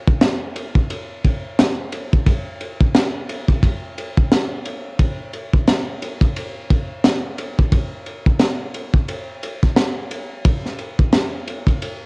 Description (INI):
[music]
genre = hip hop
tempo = 88 BPM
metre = 4/4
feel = swing 59% on 16ths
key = none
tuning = none
[part]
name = crunchy breakbeat drum kit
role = drums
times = 0.1-12.0 s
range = hi-hat, kick drum, ride cymbal, snare drum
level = -17 LUFS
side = equal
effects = cassette tape
[sound]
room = moderate spring reverb, RT60 2.2 s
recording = home recording on cassette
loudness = -17 LUFS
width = side -34 dB against mid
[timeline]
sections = 0.0-12.1 A section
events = none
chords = none